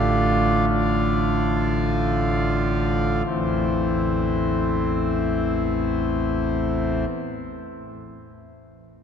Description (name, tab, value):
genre	classical, chorale-style piece for pipe organ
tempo	free time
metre	none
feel	none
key	A minor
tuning	A4 = 439 Hz
part	pipe organ, foundations	solo	0.0-7.0 s	A1 to F5	-20 LUFS	equal	none
room	wet cathedral reverb, RT60 4.6 s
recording	dark, warm production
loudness	-20 LUFS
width	side -7 dB against mid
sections	0.0-3.3 A section; 3.3-8.7 B section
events	slowing down 0.0-3.3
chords	0.0 Dm/A; 3.3 Am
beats	free time